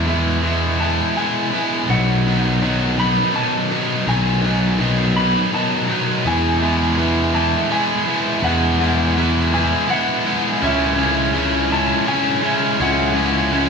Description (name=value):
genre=post-rock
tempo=82 BPM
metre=3/4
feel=straight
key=E major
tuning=A4 = 440 Hz
part: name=clean lap steel guitar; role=melody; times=0.0-13.7 s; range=E5 to B5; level=-24 LUFS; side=left 1 dB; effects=none
part: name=distorted electric guitar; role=riff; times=0.0-13.7 s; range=B2 to E4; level=-18 LUFS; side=equal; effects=overdrive
part: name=fuzz fingered electric bass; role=bass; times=0.0-13.7 s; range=B1 to E2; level=-20 LUFS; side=equal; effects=overdrive
room=moderate large studio reverb, RT60 1.1 s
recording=band playing live in one room, studio reverb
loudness=-16 LUFS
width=side -5 dB against mid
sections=0.0-13.7 A section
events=build-up 0.0-13.7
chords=0.0 E; 1.9 B; 6.3 Eadd9; 10.6 C#m